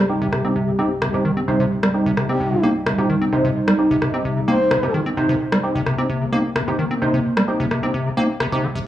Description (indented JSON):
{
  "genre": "acid house",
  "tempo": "130 BPM",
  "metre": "4/4",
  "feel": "straight",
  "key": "C minor",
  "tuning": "A4 = 440 Hz",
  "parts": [
    { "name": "dark analog pad", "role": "sustained chords", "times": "0.0-8.9 s", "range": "C3 to G4", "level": "-23 LUFS", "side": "equal", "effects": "chorus" },
    { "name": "acid bass, square", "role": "riff", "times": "0.0-8.8 s", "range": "C3 to C4", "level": "-22 LUFS", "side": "equal", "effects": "tape echo" },
    { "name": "percussive organ stab", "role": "stabs", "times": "0.1-8.6 s", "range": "C4 to C5", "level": "-23 LUFS", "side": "right 1 dB", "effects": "ensemble chorus, tape echo" },
    { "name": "electronic rim click", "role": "drums", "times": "0.3-8.5 s", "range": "none", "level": "-25 LUFS", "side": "left 1 dB", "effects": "none" },
    { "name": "breathy flute-like synth lead", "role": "melody", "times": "2.3-4.9 s", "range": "G4 to C5", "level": "-24 LUFS", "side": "left 1 dB", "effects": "chorus, analog delay" }
  ],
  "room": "moderate digital room reverb, RT60 1.1 s",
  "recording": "dry, gritty hardware recording, small room ambience",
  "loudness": "-17 LUFS",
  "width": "side -12 dB against mid",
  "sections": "0.0-8.9 A section",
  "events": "none",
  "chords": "0.0 Cm"
}